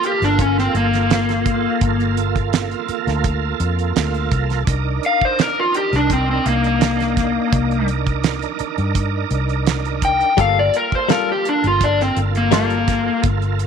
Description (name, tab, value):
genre	straight-eighth soul blues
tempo	84 BPM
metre	4/4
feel	straight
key	G minor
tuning	A4 = 440 Hz
part	overdriven slide guitar	melody	0.0-13.2 s	Bb3 to G5	-18 LUFS	left 3 dB	none
part	bright tonewheel organ	accompaniment	0.0-13.7 s	Bb3 to Bb4	-24 LUFS	right 14 dB	slow rotary speaker, overdrive, chorus vibrato
part	damped 70s drum kit	drums	0.0-13.7 s	hi-hat, kick drum, snare drum	-22 LUFS	right 4 dB	none
part	vintage muted fingered electric bass	bass	0.2-13.7 s	G1 to G2	-21 LUFS	left 1 dB	none
part	direct-recorded clean electric guitar	stabs	10.4-12.7 s	G3 to A4	-23 LUFS	left 13 dB	tape echo
room	light reverb, studio ambience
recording	1960s-style stereo with parts hard left and right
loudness	-16 LUFS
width	side -6 dB against mid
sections	0.0-13.7 A section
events	electric slide guitar solo 0.0-13.7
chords	0.0 Gm9; 4.7 Cm9; 10.4 Gm9